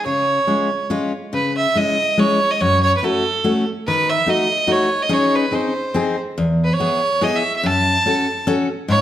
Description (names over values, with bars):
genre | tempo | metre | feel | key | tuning
alpine folk | 143 BPM | 3/4 | straight | C# minor | A4 = 441 Hz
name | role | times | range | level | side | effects
bright fiddle | melody | 0.0-9.0 s | A4 to A5 | -18 LUFS | right 2 dB | none
picked steel-string acoustic guitar | accompaniment | 0.1-9.0 s | E2 to A4 | -19 LUFS | left 2 dB | none
room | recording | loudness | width
wet recital hall reverb, RT60 1.5 s | dark, warm production | -16 LUFS | side -11 dB against mid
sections
0.0-1.3 A section; 1.3-9.0 B section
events
none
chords
0.1 Db; 1.3 C#m; 2.6 F#m; 3.9 D#dim; 5.1 G#sus4; 5.5 G#; 6.4 E; 7.6 F#m